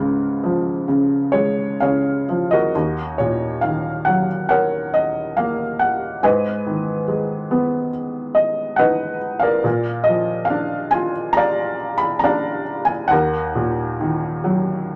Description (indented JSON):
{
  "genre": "classical, lyrical solo piano",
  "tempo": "69 BPM",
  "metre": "4/4",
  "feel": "rubato",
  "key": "Eb minor",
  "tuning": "A4 = 442 Hz",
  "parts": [
    { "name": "felt-muted upright piano", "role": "solo", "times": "0.0-15.0 s", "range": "C#2 to Cb6", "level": "-20 LUFS", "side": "equal", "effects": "none" }
  ],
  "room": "moderate studio reverb, RT60 0.5 s",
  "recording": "none",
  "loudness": "-20 LUFS",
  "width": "mono",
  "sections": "0.0-2.7 A section; 2.7-15.0 B section",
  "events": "none",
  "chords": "0.0 C#; 2.7 Ebm7; 6.2 Abm; 9.6 Bb; 13.1 Ebm",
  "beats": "0.88 1.81 | 2.74 3.62 4.50 5.37 | 6.23 7.08 7.93 8.79 | 9.65 10.51 11.37 12.24 | 13.11 13.98 14.88"
}